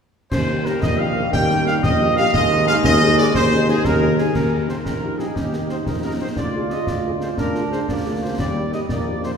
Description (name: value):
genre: military-style march for wind band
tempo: 119 BPM (dotted quarters)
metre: 6/8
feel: straight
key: Eb major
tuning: A4 = 439 Hz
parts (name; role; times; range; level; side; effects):
- clear trumpet section; melody; 0.3-9.3 s; G4 to G5; -22 LUFS; equal; none
- warm trombone section; sustained chords; 0.3-9.4 s; Eb3 to F4; -27 LUFS; right 1 dB; none
- warm tuba; bass; 0.3-9.3 s; Bb1 to Eb2; -22 LUFS; right 1 dB; none
- concert snare drum, clash cymbals and concert bass drum; drums; 0.3-9.4 s; none; -24 LUFS; equal; none
- mellow French horn section; accompaniment; 0.5-9.3 s; Ab3 to Ab4; -28 LUFS; left 4 dB; none
room: wet concert hall reverb, RT60 1.8 s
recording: heard from further back in the room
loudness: -17 LUFS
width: side -6 dB against mid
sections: 0.3-4.3 A section; 4.3-9.4 B section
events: none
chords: 0.3 Eb; 2.3 Ab5/Eb; 4.3 Eb; 6.4 Bb7/D; 8.4 Eb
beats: | 0.32 0.82 | 1.33 1.83 | 2.33 2.84 | 3.34 3.85 | 4.35 4.85 | 5.36 5.86 | 6.37 6.87 | 7.38 7.88 | 8.38 8.89